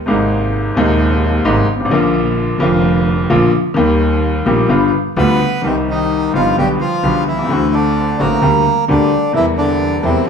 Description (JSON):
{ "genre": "tango", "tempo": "130 BPM", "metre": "4/4", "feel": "rubato", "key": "unclear", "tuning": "A4 = 440 Hz", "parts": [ { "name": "clear upright piano", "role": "accompaniment", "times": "0.1-10.2 s", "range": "Eb1 to G4", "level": "-14 LUFS", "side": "left 2 dB", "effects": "none" }, { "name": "warm double bass", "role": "bass", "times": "0.1-10.3 s", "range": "F1 to E2", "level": "-19 LUFS", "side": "right 3 dB", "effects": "none" }, { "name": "bandoneon", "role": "melody", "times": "5.2-10.3 s", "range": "C3 to B4", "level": "-16 LUFS", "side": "right 1 dB", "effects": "none" } ], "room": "moderate large studio reverb, RT60 1.1 s", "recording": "band playing live in one room", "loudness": "-12 LUFS", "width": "side -6 dB against mid", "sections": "0.0-5.6 A section; 5.6-10.3 B section", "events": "none", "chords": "0.1 Abadd9; 1.9 Bb; 3.8 Eb; 4.7 G7; 5.6 Cmadd9; 6.6 G/B; 7.5 D7; 8.4 Gm/D; 9.4 C7/E", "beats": "| 0.07 0.53 0.99 1.45 | 1.91 2.37 2.83 3.30 | 3.76 4.23 4.70 5.17 | 5.64 6.11 6.58 7.04 | 7.50 7.97 8.43 8.89 | 9.35 9.81 10.27" }